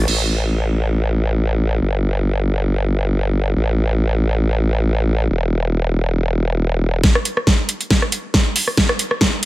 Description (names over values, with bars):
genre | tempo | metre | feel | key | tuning
heavy wobble dubstep | 138 BPM | 4/4 | swing 54% on 16ths, half-time | unclear | A4 = 440 Hz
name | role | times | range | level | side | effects
formant-sweep wobble bass | bass | 0.0-7.0 s | E1 to A1 | -16 LUFS | equal | chorus, overdrive
dubstep drum kit | drums | 0.1-0.2, 7.0-9.5 s | crash cymbal, hi-hat, rim click, snare drum | -17 LUFS | right 1 dB | none
electronic kick drum | drums | 7.0-9.3 s | none | -17 LUFS | equal | none
room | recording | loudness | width
digital ambience | none | -16 LUFS | side -17 dB against mid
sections
0.1-7.0 A section; 7.0-9.5 B section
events
build-up 7.0-9.5; drum fill 7.0-9.5; filter sweep 7.0-9.5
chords
none